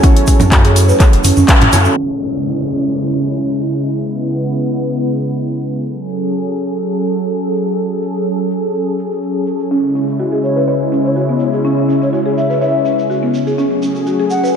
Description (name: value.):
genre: afro house.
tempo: 124 BPM.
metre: 4/4.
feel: straight.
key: C# minor.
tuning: A4 = 441 Hz.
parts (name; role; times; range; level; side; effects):
warm analog pad; sustained chords; 0.0-14.6 s; C#3 to G#5; -17 LUFS; equal; chorus, sidechain pumping.
buzzing marimba with soft mallets; arpeggios; 0.0-2.0, 9.7-14.5 s; B3 to C#5; -17 LUFS; right 2 dB; sidechain pumping, ping-pong delay.
warm analog keys; stabs; 0.0-1.9 s; C#4 to C#5; -21 LUFS; right 3 dB; chorus, sidechain pumping, ping-pong delay.
deep house drum kit; drums; 0.0-1.8 s; handclaps, hi-hat; -16 LUFS; left 1 dB; low-pass filter on hats, low-pass filter on snare, low-pass filter on room.
electronic kick drum; drums; 0.0-1.6 s; none; -10 LUFS; equal; none.
congas; percussion; 0.0-1.8 s; none; -21 LUFS; right 2 dB; none.
tube shaker; percussion; 0.0-14.6 s; none; -27 LUFS; right 5 dB; none.
warm sub bass; bass; 0.4-1.9 s; F#1 to A2; -13 LUFS; equal; sidechain pumping.
downlifter; sound effects; 2.0-5.8 s; none; -28 LUFS; right 2 dB; none.
breathy bass bansuri; melody; 10.4-14.5 s; C#5 to F#5; -20 LUFS; left 2 dB; ping-pong delay.
room: wet lush hall reverb, RT60 1.7 s, small room ambience.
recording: dreamy mix soaked in reverb, low-pass filter.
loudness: -13 LUFS.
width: side -7 dB against mid.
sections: 0.0-2.0 A section; 2.0-14.6 B section.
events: band accent 1.5; filter sweep 2.0-14.6.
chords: 0.0 F#m7; 2.0 C#m7; 5.8 F#m; 9.7 C#m; 13.6 F#m.